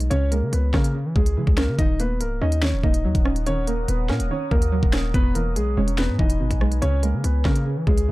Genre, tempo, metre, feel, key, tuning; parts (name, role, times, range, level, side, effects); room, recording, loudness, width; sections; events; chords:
hip hop, drill; 143 BPM; 4/4; half-time; Eb phrygian; A4 = 440 Hz
dark concert grand piano; melody; 0.0-8.1 s; Ab3 to Eb5; -27 LUFS; equal; low-pass filter, tape echo
string-like resonator pluck; accompaniment; 0.0-8.1 s; E2 to Db4; -29 LUFS; right 3 dB; chorus, low-pass filter
hard-hitting 808-style bass; bass; 0.0-8.1 s; Db1 to Fb3; -22 LUFS; equal
drill drum kit; drums; 0.0-8.1 s; finger snaps, hi-hat, kick drum, rim click, snare drum; -22 LUFS; equal
deep dark ambient pad; sustained chords; 2.7-8.1 s; B4 to Eb6; -36 LUFS; right 1 dB; chorus, built-in reverb
little or no reverb; dark, warm production; -19 LUFS; side -18 dB against mid
0.0-8.1 A section
0.1 Dbm; 1.8 Ebm7; 5.1 E; 6.8 Db5